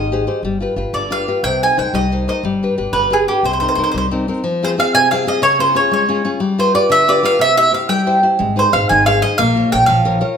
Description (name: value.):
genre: italian folk, Italian serenade.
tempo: 121 BPM (dotted quarters).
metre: 6/8.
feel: straight.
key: C minor, F minor from 4.4 s.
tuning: A4 = 436 Hz.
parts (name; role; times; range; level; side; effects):
mandolin; melody; 0.0-10.2 s; G4 to Ab5; -14 LUFS; right 2 dB; none.
nylon-string guitar; accompaniment; 0.0-10.3 s; C3 to Db5; -18 LUFS; left 3 dB; none.
upright bass; bass; 0.0-4.3, 8.4-10.2 s; G1 to C2; -22 LUFS; right 1 dB; none.
room: moderate recital hall reverb, RT60 1.5 s.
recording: none.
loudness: -13 LUFS.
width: side -7 dB against mid.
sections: 0.0-4.4 A section; 4.4-10.4 B section.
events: none.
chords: 0.4 G7; 1.4 Cm7; 2.4 G; 3.4 Cm7; 4.4 Fm; 5.4 Db; 6.4 G7; 7.4 C; 8.4 Ab; 9.4 Bbm.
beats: | 0.43 0.94 | 1.44 1.94 | 2.44 2.94 | 3.44 3.95 | 4.45 4.95 | 5.44 5.94 | 6.43 6.92 | 7.42 7.91 | 8.40 8.90 | 9.40 9.89.